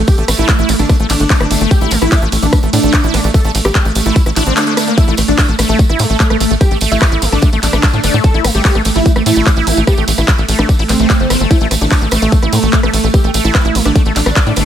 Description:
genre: psychedelic trance.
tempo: 147 BPM.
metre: 4/4.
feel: straight.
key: unclear.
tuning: A4 = 440 Hz.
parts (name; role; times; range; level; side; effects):
evolving wavetable pad; sustained chords; 0.0-14.7 s; A3; -20 LUFS; right 5 dB; chorus, built-in reverb, phaser, sidechain pumping.
tight sequencer bass; bass; 0.0-14.6 s; G1 to A2; -15 LUFS; equal; none.
dense compressed supersaw; melody; 0.1-14.7 s; A3 to A4; -18 LUFS; left 1 dB; phaser, sidechain pumping, dub echo.
big-room dance drum kit; drums; 0.1-14.6 s; handclaps, hi-hat, ride cymbal, rim click; -18 LUFS; equal; overdrive, small room ambience.
electronic kick drum; drums; 0.1-14.4 s; none; -11 LUFS; equal; small room ambience.
tambourine; percussion; 0.1-14.6 s; none; -24 LUFS; right 5 dB; none.
liquid acid bass; riff; 0.2-14.7 s; G3 to E4; -19 LUFS; moving between left 9 dB and right 7 dB; chorus, auto-pan, sidechain pumping, dub echo.
room: digital ambience.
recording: none.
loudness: -10 LUFS.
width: side -10 dB against mid.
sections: 0.0-5.0 A section; 5.0-14.7 A section.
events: drop 0.0-5.0, 5.0-14.7; band accent 4.6.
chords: 0.0 A5.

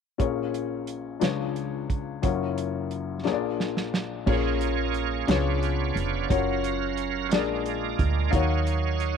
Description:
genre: slow gospel.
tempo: 59 BPM (dotted quarters).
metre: 6/8.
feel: straight.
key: Bb minor.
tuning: A4 = 440 Hz.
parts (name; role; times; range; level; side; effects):
warm upright piano; accompaniment; 0.2-9.2 s; Gb1 to F5; -28 LUFS; left 8 dB; none.
warm soul drum kit; drums; 0.2-9.2 s; crash cymbal, hi-hat, kick drum, snare drum; -28 LUFS; right 3 dB; none.
bright tonewheel organ; sustained chords; 4.3-9.2 s; Gb3 to F5; -30 LUFS; right 13 dB; slow rotary speaker, overdrive, chorus vibrato.
woody FM bass; bass; 4.3-9.2 s; F1 to Eb2; -28 LUFS; right 2 dB; none.
room: moderate spring reverb, RT60 2.4 s.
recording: 1960s-style stereo with parts hard left and right.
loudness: -24 LUFS.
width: side -7 dB against mid.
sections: 0.2-4.3 A section; 4.3-9.2 B section.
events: drum fill 3.2-4.3.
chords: 0.2 Bbm7; 1.2 Db7b9; 2.2 Gbmaj7; 3.2 Bb7; 4.3 Bbm7; 5.3 Db7b9; 6.3 Gbmaj7; 7.3 Bb7; 8.3 Ebm9.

